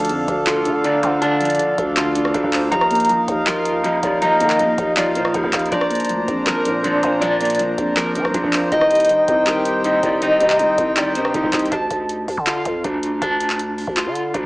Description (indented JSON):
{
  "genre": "hip hop, trap",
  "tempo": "160 BPM",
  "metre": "4/4",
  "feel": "half-time",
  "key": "D phrygian",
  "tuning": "A4 = 438 Hz",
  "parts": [
    { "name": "dark concert grand piano", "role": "accompaniment", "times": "0.0-11.7 s", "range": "D3 to F5", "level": "-24 LUFS", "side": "equal", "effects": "none" },
    { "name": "hand-pumped harmonium", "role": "sustained chords", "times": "0.0-11.7 s", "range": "D4 to Bb5", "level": "-23 LUFS", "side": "equal", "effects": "none" },
    { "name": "electric guitar at the edge of break-up", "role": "arpeggios", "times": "0.0-14.5 s", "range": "D4 to Bb5", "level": "-20 LUFS", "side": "equal", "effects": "tremolo, digital delay" },
    { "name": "growling 808-style bass", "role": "bass", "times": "0.0-14.5 s", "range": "Bb1 to F3", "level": "-25 LUFS", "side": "equal", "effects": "none" },
    { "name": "booming analog drum machine", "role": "drums", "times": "0.0-14.5 s", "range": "handclaps, hi-hat, kick drum, rim click", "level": "-25 LUFS", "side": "equal", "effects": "none" },
    { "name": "breathy mellow large pan pipes", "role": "second line", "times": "0.5-11.3 s", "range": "A4 to Eb5", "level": "-23 LUFS", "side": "equal", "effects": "digital delay" }
  ],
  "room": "moderate lush hall reverb, RT60 1.5 s, digital ambience",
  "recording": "small speaker sound",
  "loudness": "-16 LUFS",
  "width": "side -22 dB against mid",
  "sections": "0.0-11.7 A section; 11.7-14.5 B section",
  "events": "none",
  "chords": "0.0 Dm; 2.7 Ebsus2; 5.7 Bbadd9; 8.7 Cm; 11.7 Dm"
}